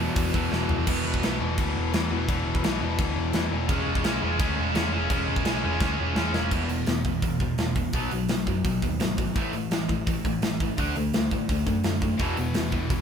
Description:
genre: punk rock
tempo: 170 BPM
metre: 4/4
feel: straight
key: E mixolydian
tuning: A4 = 440 Hz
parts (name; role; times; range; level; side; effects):
- high-gain distorted guitar; riff; 0.0-7.0, 12.2-13.0 s; E2 to C#4; -32 LUFS; left 1 dB; distortion
- overdriven semi-hollow guitar; riff; 0.0-13.0 s; E2 to D4; -30 LUFS; left 7 dB; none
- tight distorted guitar; riff; 0.0-1.4, 3.7-13.0 s; E2 to D4; -30 LUFS; right 6 dB; distortion
- overdriven picked electric bass; bass; 0.0-13.0 s; E1 to A2; -30 LUFS; right 1 dB; none
- tight metal drum kit; drums; 0.2-13.0 s; crash cymbal, hi-hat, kick drum, snare drum, toms; -28 LUFS; equal; none
room: moderate studio reverb, RT60 0.6 s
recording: band playing live in one room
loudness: -23 LUFS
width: side -7 dB against mid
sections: 0.9-6.5 A section; 6.5-13.0 B section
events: drum fill 0.5-0.9, 5.8-6.5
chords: 0.0 E5; 3.7 C#m/E; 6.5 E5; 7.9 B5; 9.4 A5; 10.8 D; 12.2 E5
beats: 0.17 0.52 | 0.87 1.23 1.58 1.93 | 2.28 2.63 2.99 3.34 | 3.69 4.05 4.40 4.75 | 5.11 5.46 5.81 6.17 | 6.52 6.87 7.23 7.58 | 7.94 8.29 8.65 9.00 | 9.36 9.71 10.07 10.42 | 10.78 11.13 11.48 11.84 | 12.19 12.55 12.90

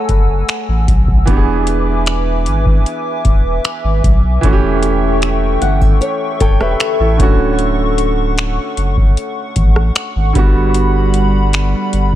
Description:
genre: contemporary R&B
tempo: 76 BPM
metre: 4/4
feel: straight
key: unclear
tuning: A4 = 440 Hz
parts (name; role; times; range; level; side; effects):
- bright grand piano; accompaniment; 0.0-12.2 s; D3 to G5; -19 LUFS; right 4 dB; dub echo
- hollow soft pad; sustained chords; 0.0-12.2 s; G3 to E6; -20 LUFS; left 2 dB; chorus, sidechain pumping
- flamenco guitar; arpeggios; 0.0-7.2 s; G4 to F#5; -22 LUFS; left 6 dB; dub echo
- warm sub bass; bass; 0.1-12.2 s; D1 to B1; -16 LUFS; equal; none
- booming analog drum machine; drums; 0.1-12.2 s; finger snaps, hi-hat, kick drum, rim click; -13 LUFS; equal; none
room: digital ambience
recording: echo-heavy mix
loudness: -11 LUFS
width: side -13 dB against mid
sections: 0.0-1.3 A section; 1.3-12.2 B section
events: none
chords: 0.0 F#m9; 1.3 E7; 4.4 A7/E; 7.2 Dmaj7; 10.4 Gmaj7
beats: 0.48 | 1.27 2.06 2.85 3.64 | 4.43 5.22 6.01 6.80 | 7.59 8.38 9.17 9.96 | 10.75 11.54

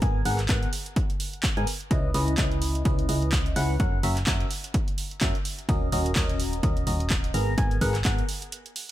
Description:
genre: piano house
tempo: 127 BPM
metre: 4/4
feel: swing 57% on 16ths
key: unclear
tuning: A4 = 437 Hz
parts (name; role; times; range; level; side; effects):
- barking FM electric piano; riff; 0.0-8.2 s; B3 to A#5; -30 LUFS; left 1 dB; phaser, sidechain pumping, ping-pong delay
- solid FM bass; bass; 0.0-8.2 s; D#1 to G#2; -27 LUFS; equal; sidechain pumping
- electronic kick drum; drums; 0.0-8.2 s; none; -26 LUFS; equal; overdrive
- punchy analog drum machine; drums; 0.0-8.9 s; handclaps, hi-hat; -31 LUFS; right 2 dB; overdrive
room: little or no reverb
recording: none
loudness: -23 LUFS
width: side -14 dB against mid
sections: 0.0-8.9 A section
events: break 8.5-8.9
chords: 0.0 G#m9; 1.9 C#m9; 3.8 F#7; 5.5 D#m7; 7.3 G#m9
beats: | 0.02 0.49 0.96 1.44 | 1.91 2.38 2.85 3.33 | 3.80 4.27 4.74 5.21 | 5.69 6.16 6.63 7.11 | 7.58 8.05 8.52

